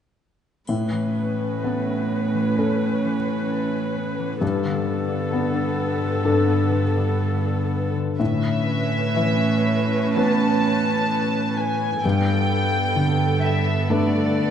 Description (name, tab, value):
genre	cinematic, emotional film score for orchestra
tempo	63 BPM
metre	4/4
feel	uneven beats, rubato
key	A major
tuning	A4 = 441 Hz
part	felt-muted upright piano	accompaniment	0.7-14.5 s	G2 to B4	-25 LUFS	left 2 dB	none
part	warm chamber viola section	accompaniment	0.7-14.5 s	B3 to B4	-27 LUFS	right 3 dB	none
part	concert harp	arpeggios	0.7-14.5 s	G2 to C#5	-28 LUFS	left 7 dB	none
part	warm studio cello section	bass	0.7-14.5 s	G2 to A2	-25 LUFS	right 3 dB	none
part	triangle	percussion	0.7-2.5 s	none	-49 LUFS	left 3 dB	none
part	warm studio violin section	melody	8.2-14.5 s	D5 to A5	-25 LUFS	left 2 dB	none
room	moderate scoring stage reverb, RT60 2.0 s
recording	nothing above 10.4 kHz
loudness	-19 LUFS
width	side -8 dB against mid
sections	0.7-8.2 A section; 8.2-14.5 B section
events	none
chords	0.7 Aadd9; 4.4 Gadd9; 8.2 Aadd9; 12.0 Gadd9